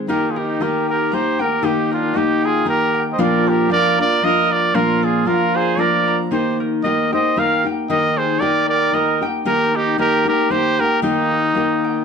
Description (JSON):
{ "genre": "mexican folk, mariachi", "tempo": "115 BPM", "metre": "3/4", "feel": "swing 55% on 8ths", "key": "Eb major", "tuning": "A4 = 440 Hz", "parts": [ { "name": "nylon-string guitar", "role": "accompaniment", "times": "0.0-12.0 s", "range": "Bb2 to G4", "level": "-20 LUFS", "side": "left 1 dB", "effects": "none" }, { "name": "warm trumpet", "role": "melody", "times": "0.1-12.0 s", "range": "Eb4 to F5", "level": "-19 LUFS", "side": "equal", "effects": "none" }, { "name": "mellow trumpet", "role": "second line", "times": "0.1-12.0 s", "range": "Bb3 to C5", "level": "-23 LUFS", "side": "right 6 dB", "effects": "none" }, { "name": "concert harp", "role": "arpeggios", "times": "0.1-12.0 s", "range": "Eb4 to Bb6", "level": "-24 LUFS", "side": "left 6 dB", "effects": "none" } ], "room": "moderate studio reverb, RT60 0.6 s", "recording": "none", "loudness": "-15 LUFS", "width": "side -6 dB against mid", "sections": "0.1-12.0 A section", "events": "none", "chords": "0.1 Eb; 3.2 Bb; 6.3 Eb", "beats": "| 0.09 0.61 1.13 | 1.64 2.16 2.67 | 3.19 3.71 4.22 | 4.74 5.26 5.78 | 6.31 6.84 7.37 | 7.89 8.41 8.93 | 9.46 9.98 10.50 | 11.02 11.54" }